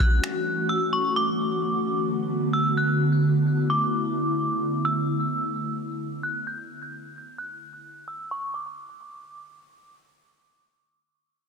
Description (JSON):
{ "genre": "hip hop", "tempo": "130 BPM", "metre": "4/4", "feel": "half-time", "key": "B minor", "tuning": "A4 = 440 Hz", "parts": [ { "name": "metallic FM bell", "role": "melody", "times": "0.0-9.9 s", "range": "C#6 to G6", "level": "-28 LUFS", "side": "equal", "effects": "chorus, low-pass filter, tape echo" }, { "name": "ethereal airy pad", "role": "sustained chords", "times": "0.0-4.8 s", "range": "D3 to F#4", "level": "-25 LUFS", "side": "equal", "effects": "ensemble chorus, built-in reverb, low-pass filter" } ], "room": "moderate digital room reverb, RT60 1.1 s, digital ambience", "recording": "dense, heavily limited modern master", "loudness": "-22 LUFS", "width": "side -5 dB against mid", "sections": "0.0-8.5 A section; 8.5-11.5 B section", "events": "filter sweep 0.0-8.5", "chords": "0.0 F#m7; 1.2 Bm7; 4.8 N.C." }